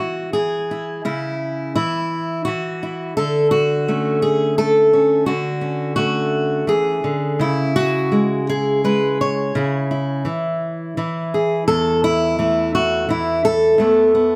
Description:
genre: folk, solo fingerstyle acoustic guitar.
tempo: 85 BPM.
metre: 3/4.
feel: rubato.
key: unclear.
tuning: A4 = 440 Hz.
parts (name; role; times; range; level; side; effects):
fingerpicked steel-string acoustic guitar; solo; 0.0-14.4 s; E2 to C#5; -19 LUFS; equal; none.
room: light reverb.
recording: close, detailed microphones.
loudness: -19 LUFS.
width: mono.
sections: 0.0-14.4 A section.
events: none.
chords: 0.0 C#m; 3.2 Dmaj7; 7.4 C#m; 11.7 Esus4.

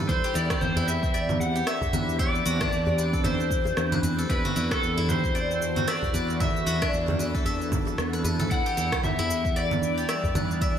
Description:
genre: organic downtempo.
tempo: 114 BPM.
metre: 4/4.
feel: swing 58% on 16ths.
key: unclear.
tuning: A4 = 438 Hz.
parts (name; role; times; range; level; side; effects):
warm analog pad; sustained chords; 0.0-10.8 s; E3 to A4; -34 LUFS; right 2 dB; chorus, sidechain pumping.
steel-string zither; arpeggios; 0.0-10.8 s; D4 to E5; -31 LUFS; left 1 dB; digital delay.
fretless electric bass; bass; 0.0-10.8 s; E2; -29 LUFS; equal; lush chorus, sidechain pumping.
overdriven slide guitar; melody; 0.1-10.8 s; A4 to F#5; -29 LUFS; left 1 dB; wide subtle chorus, digital delay.
electronic kick drum; drums; 0.1-10.7 s; none; -29 LUFS; equal; none.
electronic shaker, rim click and congas; drums; 0.1-10.7 s; none; -32 LUFS; right 2 dB; overdrive, gated reverb.
djembe; percussion; 0.3-10.5 s; none; -34 LUFS; equal; none.
room: moderate lush hall reverb, RT60 2.4 s.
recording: bright 1980s-style digital production.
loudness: -23 LUFS.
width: side -9 dB against mid.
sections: 0.0-10.8 A section.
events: none.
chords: 0.1 Cmaj7/E; 8.5 Em7.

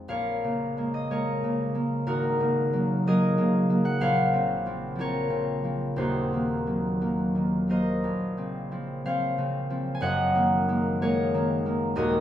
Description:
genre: classical, solo harp piece.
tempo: 61 BPM (dotted quarters).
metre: 6/8.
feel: uneven beats, rubato.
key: Bb minor.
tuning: A4 = 440 Hz.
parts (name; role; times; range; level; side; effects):
concert harp; solo; 0.0-12.2 s; Eb1 to Ab5; -24 LUFS; equal; none.
room: wet stone room reverb, RT60 1.3 s.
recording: heard from further back in the room.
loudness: -24 LUFS.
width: side -11 dB against mid.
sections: 0.1-12.2 A section.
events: none.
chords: 0.1 Bbm7; 2.1 Ab9sus4; 4.0 Bbmadd9; 6.0 Ebm6; 8.0 Bbmadd9; 10.0 Gb69.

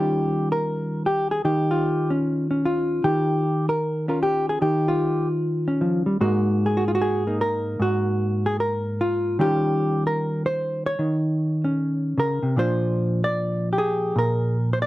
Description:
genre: solo jazz.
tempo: 151 BPM.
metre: 4/4.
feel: swing 64% on 8ths.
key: Eb mixolydian.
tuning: A4 = 441 Hz.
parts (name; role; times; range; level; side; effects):
hollow-body jazz guitar; solo; 0.0-14.9 s; Ab2 to D5; -20 LUFS; equal; none.
room: light reverb.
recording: dark, warm production.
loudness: -20 LUFS.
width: side -16 dB against mid.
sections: 0.0-14.9 A section.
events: none.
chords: 0.0 Eb9; 6.2 Absus2; 9.4 Eb9; 12.6 Bb9.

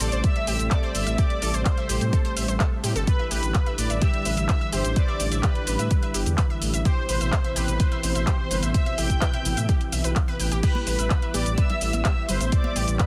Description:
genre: progressive house.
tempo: 127 BPM.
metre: 4/4.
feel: straight.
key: A minor.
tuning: A4 = 442 Hz.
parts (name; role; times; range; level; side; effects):
soft supersaw; melody; 0.0-13.1 s; B4 to G5; -34 LUFS; equal; vintage 12-bit sampler grit, sidechain pumping, tape echo.
warm studio violin section; second line; 0.0-13.1 s; B5 to G6; -39 LUFS; equal; sidechain pumping, tape echo.
lush unison pad; sustained chords; 0.0-13.1 s; B2 to B3; -34 LUFS; equal; chorus, sidechain pumping.
unison pluck; arpeggios; 0.0-13.1 s; G4 to G6; -37 LUFS; equal; sidechain pumping, tape echo.
dark detuned saw bass; bass; 0.0-13.0 s; G1 to A2; -28 LUFS; equal; sidechain pumping.
house drum kit; drums; 0.0-13.1 s; crash cymbal, handclaps, hi-hat, shaker; -32 LUFS; equal; none.
electronic kick drum; drums; 0.2-13.1 s; none; -25 LUFS; equal; none.
congas; percussion; 10.7-12.7 s; none; -37 LUFS; equal; sidechain pumping on perc.
room: little or no reverb.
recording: dense, heavily limited modern master.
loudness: -24 LUFS.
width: mono.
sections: 0.0-13.1 A section.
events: none.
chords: 0.0 Am7; 3.1 Em7; 6.9 Cmaj7; 10.6 G6.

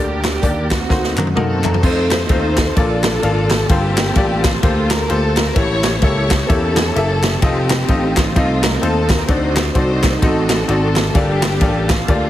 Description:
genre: uptempo gospel.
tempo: 129 BPM.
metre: 4/4.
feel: swing 60% on 8ths.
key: G minor.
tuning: A4 = 440 Hz.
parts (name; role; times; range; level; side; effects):
warm symphonic string section; melody; 0.0-12.3 s; A3 to C#5; -21 LUFS; equal; none.
bright grand piano; accompaniment; 0.0-12.3 s; G2 to Bb5; -21 LUFS; left 3 dB; none.
tonewheel organ; sustained chords; 0.0-12.3 s; F4 to C6; -28 LUFS; right 2 dB; fast rotary speaker, chorus vibrato.
vintage slap bass; bass; 0.0-12.3 s; F1 to F#2; -20 LUFS; equal; none.
swinging big-band drum kit; drums; 0.2-12.2 s; crash cymbal, hi-hat, kick drum, ride cymbal, snare drum, toms; -18 LUFS; equal; none.
group handclap; percussion; 0.2-12.0 s; none; -26 LUFS; left 2 dB; none.
room: light reverb, studio reverb.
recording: heavily compressed radio sound, multiband compression.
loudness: -13 LUFS.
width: side -13 dB against mid.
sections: 0.0-1.8 A section; 1.8-12.3 A section.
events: drum fill 0.9-1.8; grand piano fill 1.1-1.8.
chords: 0.0 Gm/D; 0.9 D7b9b13; 1.8 F7; 2.8 Bbmaj7; 3.7 Gm11; 5.6 A7b9; 7.4 F7; 9.3 D7b9; 11.2 Gm9.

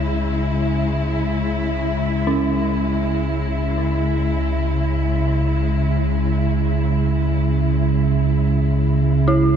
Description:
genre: dark ambient drone.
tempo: free time.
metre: none.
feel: none.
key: C# minor.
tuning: A4 = 439 Hz.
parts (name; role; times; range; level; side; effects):
dark symphonic cello section; sustained chords; 0.0-9.6 s; C#3 to E4; -22 LUFS; left 1 dB; none.
deep rumbling drone; drone; 0.0-9.6 s; C#2 to C#3; -19 LUFS; right 1 dB; built-in reverb.
dark detuned synth bell; arpeggios; 2.3-9.6 s; C#4 to E4; -25 LUFS; right 3 dB; chorus, ping-pong delay.
room: wet cathedral reverb, RT60 5.8 s.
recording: in a vast, echoing space.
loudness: -17 LUFS.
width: side -8 dB against mid.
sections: 0.0-9.6 A section.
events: none.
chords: 0.0 C#m.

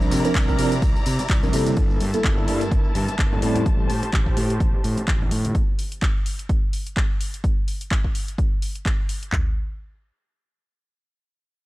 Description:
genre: filtered disco house.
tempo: 127 BPM.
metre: 4/4.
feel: swing 56% on 16ths.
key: unclear.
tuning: A4 = 439 Hz.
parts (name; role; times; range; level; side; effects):
mellow tine electric piano; accompaniment; 0.0-3.9 s; F3 to Bb4; -24 LUFS; right 1 dB; medium stereo tremolo, phaser, sidechain pumping, low-pass filter.
dark symphonic string section; sustained chords; 0.0-5.5 s; E4 to Bb5; -30 LUFS; equal; sidechain pumping, low-pass filter.
fuzz fingered electric bass; bass; 0.0-5.5 s; G1 to C3; -25 LUFS; equal; overdrive, tube saturation, sidechain pumping, low-pass filter.
house drum kit; drums; 0.0-9.3 s; handclaps, hi-hat, ride cymbal, tambourine; -30 LUFS; equal; sidechain pumping on hats, sidechain pumping on perc, sidechain pumping on cymbals.
maracas and congas; percussion; 0.0-5.5 s; none; -34 LUFS; right 1 dB; none.
house drum kit; drums; 0.3-9.5 s; handclaps, kick drum, toms; -22 LUFS; equal; none.
room: little or no reverb.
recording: dry, gritty hardware recording.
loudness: -19 LUFS.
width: side -18 dB against mid.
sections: 0.0-1.8 A section; 1.8-9.3 B section; 9.3-11.7 C section.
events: drop 0.0-1.8.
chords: 0.0 C9sus4; 1.8 Gm69; 3.4 Am7; 5.5 N.C..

